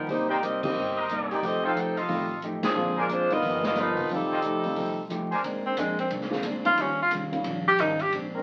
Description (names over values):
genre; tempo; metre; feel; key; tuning
jazz, big band swing; 179 BPM; 4/4; swing 63% on 8ths; unclear; A4 = 440 Hz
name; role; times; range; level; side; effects
clear saxophone section; melody; 0.0-5.1 s; F3 to G5; -29 LUFS; equal; none
upright bass; bass; 0.0-8.4 s; F1 to F2; -42 LUFS; equal; none
hollow-body jazz guitar; accompaniment; 0.1-8.4 s; G2 to G4; -37 LUFS; equal; none
warm baby grand piano; accompaniment; 0.1-7.4 s; D3 to G4; -34 LUFS; equal; none
swinging big-band drum kit; drums; 0.1-8.2 s; crash cymbal, hi-hat, kick drum, ride cymbal, snare drum; -39 LUFS; equal; none
clear trumpet section; stabs; 0.3-5.4 s; B3 to Ab5; -32 LUFS; equal; none
mellow trombone section; sustained chords; 5.4-8.4 s; F3 to Bb4; -38 LUFS; equal; none
clear tenor saxophone; melody; 5.7-8.1 s; Ab3 to G4; -26 LUFS; equal; none
room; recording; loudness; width
wet studio ambience, RT60 0.5 s; very old 78 rpm record, vinyl crackle; -27 LUFS; mono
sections
0.0-5.4 A section; 5.4-8.4 B section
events
band accent 0.6, 2.6; tenor saxophone solo 5.4-8.4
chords
0.1 Cm7; 1.4 F9; 2.8 Bb9; 3.4 G7alt; 4.1 F9; 5.4 Bb9; 6.8 Eb9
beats
| 0.08 0.41 0.75 1.08 | 1.42 1.75 2.09 2.42 | 2.76 3.09 3.43 3.76 | 4.10 4.43 4.77 5.10 | 5.44 5.77 6.11 6.44 | 6.78 7.12 7.45 7.79 | 8.12